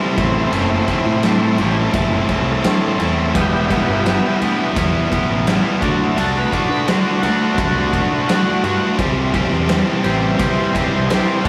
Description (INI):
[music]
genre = classic rock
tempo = 85 BPM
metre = 4/4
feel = straight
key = unclear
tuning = A4 = 438 Hz
[part]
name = bright tonewheel organ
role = sustained chords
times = 0.0-11.5 s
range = E3 to D5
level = -26 LUFS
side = equal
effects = slow rotary speaker, overdrive
[part]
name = distorted electric guitar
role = riff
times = 0.0-11.5 s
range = A2 to G4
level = -22 LUFS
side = equal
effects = overdrive
[part]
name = sludgy distorted guitar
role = riff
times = 0.0-11.5 s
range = E2 to G4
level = -27 LUFS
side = equal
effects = overdrive
[part]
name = fuzz fingered electric bass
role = bass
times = 0.2-11.5 s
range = E1 to D3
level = -24 LUFS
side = equal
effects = overdrive
[part]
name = big rock drum kit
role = drums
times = 0.2-11.5 s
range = kick drum, ride cymbal, snare drum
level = -23 LUFS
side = equal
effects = none
[sound]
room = moderate studio ambience, RT60 0.5 s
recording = rough rehearsal-room recording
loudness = -17 LUFS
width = mono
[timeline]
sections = 0.0-11.5 A section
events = none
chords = 0.2 Am; 3.4 Em; 5.8 D; 9.0 C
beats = | 0.53 1.24 1.95 2.65 | 3.35 4.06 4.76 5.47 | 6.17 6.88 7.58 8.29 | 8.99 9.70 10.40 11.11